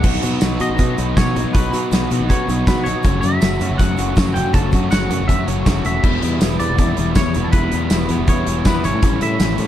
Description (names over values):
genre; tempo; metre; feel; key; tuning
indie rock; 160 BPM; 4/4; straight; unclear; A4 = 440 Hz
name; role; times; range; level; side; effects
twangy electric guitar; melody; 0.0-9.7 s; A4 to A5; -25 LUFS; equal; analog chorus
biting overdriven guitar; riff; 0.0-9.7 s; F#2 to F#4; -25 LUFS; right 10 dB; lush chorus, slapback echo
crunchy overdriven guitar; riff; 0.0-9.7 s; E2 to F#4; -23 LUFS; left 8 dB; none
modern bright fingered electric bass; bass; 0.0-9.7 s; E1 to B2; -21 LUFS; equal; none
loose indie drum kit; drums; 0.0-9.7 s; crash cymbal, hi-hat, kick drum, snare drum, tambourine; -18 LUFS; equal; none
tube shaker; percussion; 0.0-9.5 s; none; -47 LUFS; left 13 dB; none
room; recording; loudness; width
light reverb; dark, warm production, lossy compression artefacts; -15 LUFS; side -11 dB against mid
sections
0.0-9.7 A section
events
none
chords
0.0 Badd9; 3.0 F#m7; 6.0 Em; 8.8 A7